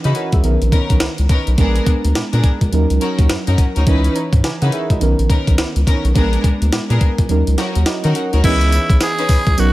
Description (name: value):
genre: R&B, new jack swing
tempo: 105 BPM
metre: 4/4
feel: swing 62% on 16ths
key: C# dorian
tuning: A4 = 440 Hz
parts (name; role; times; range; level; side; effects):
- mellow FM electric piano; accompaniment; 0.0-9.7 s; D#3 to A#5; -22 LUFS; right 3 dB; chorus, tremolo
- warm studio string section; stabs; 0.0-9.3 s; B3 to B4; -24 LUFS; left 3 dB; tape echo
- round analog bass; bass; 0.0-9.7 s; A#1 to D#3; -16 LUFS; equal; none
- breakbeat sampler-style drum kit; drums; 0.0-9.7 s; crash cymbal, hi-hat, kick drum, snare drum, tambourine; -16 LUFS; equal; none
- raspy tenor saxophone; melody; 8.4-9.7 s; E4 to G#4; -18 LUFS; right 1 dB; none
room: little or no reverb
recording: none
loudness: -13 LUFS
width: side -17 dB against mid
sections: 0.0-8.4 A section; 8.4-9.7 B section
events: kick muted 7.3-8.4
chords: 0.4 Bmaj9; 1.6 A#7b9; 2.7 D#m7; 3.9 C#m9; 5.0 Bmaj9; 6.2 A#7b9; 7.3 D#m7; 8.4 C#m9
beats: 0.44 1.01 | 1.58 2.15 2.73 3.30 | 3.87 4.44 5.01 5.58 | 6.15 6.73 7.30 7.87 | 8.44 9.01 9.58